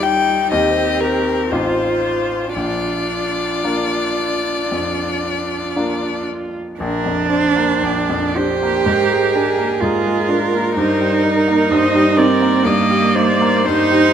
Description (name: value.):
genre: classical, slow romantic movement for piano quartet.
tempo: 55-64 BPM.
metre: 4/4.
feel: rubato.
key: Bb major.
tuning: A4 = 439 Hz.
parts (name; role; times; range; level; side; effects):
rich violin; melody; 0.0-14.1 s; Ab4 to G5; -21 LUFS; left 7 dB; none.
rich cello; second line; 0.0-14.1 s; Bb3 to G4; -18 LUFS; right 6 dB; none.
bright grand piano; accompaniment; 0.0-14.1 s; A1 to G4; -21 LUFS; left 2 dB; none.
clear viola; accompaniment; 0.0-14.1 s; G3 to Eb5; -22 LUFS; right 2 dB; none.
room: moderate recital hall reverb, RT60 1.6 s.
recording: close, detailed microphones.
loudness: -15 LUFS.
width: side -8 dB against mid.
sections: 0.0-6.8 A section; 6.8-14.1 A section.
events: none.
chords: 0.0 Eb; 0.5 Cm/Eb; 1.5 F7/A; 2.6 Bb; 8.9 Bb7/Ab; 10.8 Eb/G.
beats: 0.53 1.52 | 2.55 3.64 4.71 5.76 | 6.80 7.84 8.88 9.82 | 10.77 11.71 12.65 13.65.